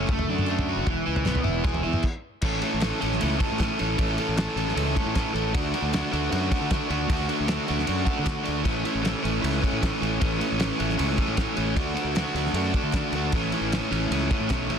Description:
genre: indie rock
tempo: 154 BPM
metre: 4/4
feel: straight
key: A major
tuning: A4 = 440 Hz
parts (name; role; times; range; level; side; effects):
- overdriven electric guitar; riff; 0.0-14.8 s; E3 to A4; -26 LUFS; equal; none
- fuzz fingered electric bass; bass; 0.0-14.8 s; E1 to D3; -29 LUFS; equal; overdrive
- cloth-damped thuddy drum kit; drums; 0.1-14.8 s; crash cymbal, kick drum, ride cymbal, snare drum, toms; -28 LUFS; equal; none
- group handclap; percussion; 0.1-14.6 s; none; -44 LUFS; left 16 dB; none
room: small room ambience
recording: dense, heavily limited modern master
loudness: -23 LUFS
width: side -7 dB against mid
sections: 0.0-2.4 A section; 2.4-14.8 B section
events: stop 2.0-2.4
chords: 0.1 D/F#; 0.9 E; 2.4 A; 5.5 D; 8.7 A; 11.8 D; 13.3 A

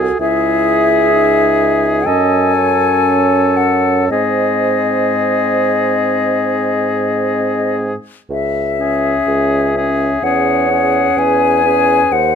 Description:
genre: classical, slow romantic movement for wind quintet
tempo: 56-66 BPM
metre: 4/4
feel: rubato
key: C# minor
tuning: A4 = 440 Hz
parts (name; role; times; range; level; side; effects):
- warm oboe; second line; 0.0-12.1 s; G#4 to A4; -19 LUFS; left 2 dB; none
- mellow French horn; accompaniment; 0.0-12.1 s; B#3 to F#4; -20 LUFS; right 1 dB; none
- warm clarinet; accompaniment; 0.0-12.3 s; G#4 to D#5; -20 LUFS; right 14 dB; none
- dark bassoon; bass; 0.0-12.3 s; C#2 to G#2; -19 LUFS; right 3 dB; none
- concert flute; melody; 0.2-12.3 s; D#5 to G#5; -16 LUFS; left 10 dB; none
room: light reverb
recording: close, detailed microphones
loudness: -12 LUFS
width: side -7 dB against mid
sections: 0.0-12.3 A section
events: none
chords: 0.2 C#m; 2.1 F#m; 4.1 G#; 8.3 C#m; 10.2 C#m/E

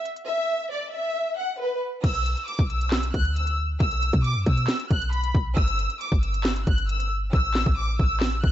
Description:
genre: hip hop, trap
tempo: 136 BPM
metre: 4/4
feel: half-time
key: B minor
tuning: A4 = 440 Hz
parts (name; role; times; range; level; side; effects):
- trap drum kit; drums; 0.1-8.5 s; crash cymbal, handclaps, hi-hat, kick drum, snare drum; -24 LUFS; equal; vintage 12-bit sampler grit
- warm studio violin section; melody; 0.3-8.5 s; B4 to F#6; -27 LUFS; equal; none
- clean 808-style bass; bass; 2.0-8.5 s; G1 to B2; -25 LUFS; equal; none
room: little or no reverb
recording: nothing above 7.8 kHz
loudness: -22 LUFS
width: side -12 dB against mid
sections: 0.0-2.0 A section; 2.0-8.5 B section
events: hi-hats muted 7.3-8.5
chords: 0.3 N.C.; 2.0 Bm; 5.6 Em/G; 7.3 A5

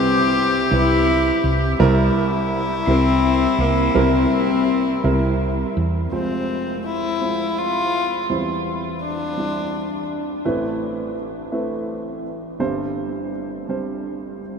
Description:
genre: acoustic folk-pop ballad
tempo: 56 BPM (dotted quarters)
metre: 6/8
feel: straight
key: C major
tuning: A4 = 442 Hz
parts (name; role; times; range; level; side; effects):
- rich cello; melody; 0.0-5.4 s; Bb3 to E4; -22 LUFS; left 3 dB; none
- rich violin; second line; 0.0-10.1 s; C4 to G4; -23 LUFS; left 3 dB; none
- warm concert grand piano; accompaniment; 0.0-14.6 s; F1 to C5; -23 LUFS; right 3 dB; none
- woody fretless electric bass; bass; 0.7-6.1 s; C2 to E2; -21 LUFS; right 1 dB; none
room: wet huge ambient reverb, RT60 7.5 s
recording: in a vast, echoing space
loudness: -18 LUFS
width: side -6 dB against mid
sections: 0.0-6.1 A section; 6.1-14.6 B section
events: violin solo 6.1-14.6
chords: 0.0 Cmaj7; 1.8 C7; 6.1 Fm; 8.3 C/E; 10.4 Amadd9; 12.6 Gsus4

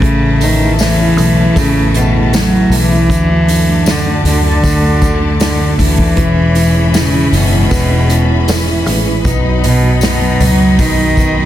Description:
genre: pop ballad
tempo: 78 BPM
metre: 4/4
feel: straight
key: E major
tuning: A4 = 443 Hz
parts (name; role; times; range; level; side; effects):
- warm cello; melody; 0.0-11.5 s; B2 to F#3; -13 LUFS; equal; none
- rich studio cello section; second line; 0.0-11.5 s; E2 to D#4; -19 LUFS; left 3 dB; none
- felt-muted upright piano; accompaniment; 0.0-11.5 s; B2 to E5; -19 LUFS; right 5 dB; none
- bright studio string section; sustained chords; 0.0-11.5 s; C#4 to B5; -24 LUFS; left 4 dB; none
- vintage muted fingered electric bass; bass; 0.0-11.5 s; E1 to D2; -15 LUFS; equal; none
- unplugged drum kit; drums; 0.0-11.4 s; hi-hat, kick drum, snare drum; -17 LUFS; equal; none
- tambourine; percussion; 0.4-11.4 s; none; -28 LUFS; left 7 dB; none
room: light reverb, studio reverb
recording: dense, heavily limited modern master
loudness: -9 LUFS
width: side -12 dB against mid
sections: 0.0-11.5 A section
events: none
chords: 0.0 Aadd9; 3.1 D; 6.2 E; 9.2 B

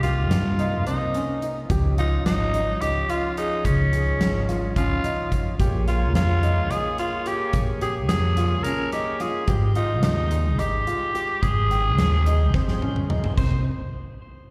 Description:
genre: progressive instrumental, band music in an uneven meter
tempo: 216 BPM (eighths)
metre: 7/8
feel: straight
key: C phrygian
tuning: A4 = 440 Hz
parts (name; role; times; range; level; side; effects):
- raspy tenor saxophone; melody; 0.0-13.6 s; Db4 to C5; -29 LUFS; equal; slapback echo, delay
- tonewheel organ; accompaniment; 0.0-13.6 s; C3 to G5; -36 LUFS; equal; slow rotary speaker
- warm concert grand piano; arpeggios; 0.0-13.6 s; C4 to G5; -33 LUFS; equal; slapback echo
- upright bass; bass; 0.0-13.6 s; Ab1 to G2; -25 LUFS; equal; none
- huge arena drum kit; drums; 0.0-13.5 s; crash cymbal, hi-hat, kick drum, snare drum, toms; -30 LUFS; equal; none
room: studio reverb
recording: live gig heard through the venue's PA, recital hall reverb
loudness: -23 LUFS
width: mono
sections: 0.0-13.4 A section; 13.4-14.5 B section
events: drum fill 12.5-13.4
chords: 0.0 Cm7; 1.7 Dbadd9; 5.6 Bbm7; 9.5 Abmaj7; 13.4 Cm7

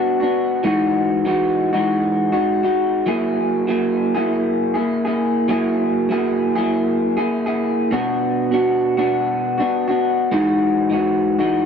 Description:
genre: indie pop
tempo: 99 BPM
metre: 4/4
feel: swing 55% on 16ths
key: E lydian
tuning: A4 = 440 Hz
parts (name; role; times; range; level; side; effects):
- electric guitar through a small old amp; solo; 0.0-11.7 s; B2 to G#4; -16 LUFS; equal; wide subtle chorus, warbly pitch drift
room: little or no reverb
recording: dry, close 1970s-style studio recording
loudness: -16 LUFS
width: side -7 dB against mid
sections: 0.0-11.7 A section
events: none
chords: 0.0 Bm; 0.7 Emaj9; 3.1 F#9; 7.9 Bm; 10.3 Emaj9

